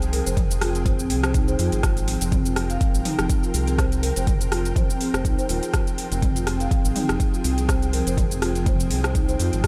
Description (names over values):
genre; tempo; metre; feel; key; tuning
afro house; 123 BPM; 4/4; swing 55% on 16ths; F minor; A4 = 440 Hz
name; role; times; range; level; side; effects
ethereal airy pad; sustained chords; 0.0-9.7 s; F3 to G5; -32 LUFS; equal; ensemble chorus, built-in reverb, sidechain pumping
round analog bass; bass; 0.0-9.7 s; Eb1 to F2; -27 LUFS; equal; sidechain pumping
deep house drum kit; drums; 0.0-9.7 s; cabasa, hi-hat, rim click, toms; -31 LUFS; equal; overdrive, studio reverb
marimba with soft mallets; arpeggios; 0.1-9.7 s; C4 to F5; -31 LUFS; equal; sidechain pumping, delay
electronic kick drum; drums; 0.4-9.7 s; none; -25 LUFS; equal; studio reverb
room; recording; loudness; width
light reverb; none; -22 LUFS; mono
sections
0.0-9.7 A section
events
none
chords
0.0 Fm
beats
0.37 0.86 1.35 | 1.83 2.32 2.81 3.30 | 3.79 4.27 4.76 5.25 | 5.74 6.22 6.71 7.20 | 7.69 8.18 8.66 9.15 | 9.64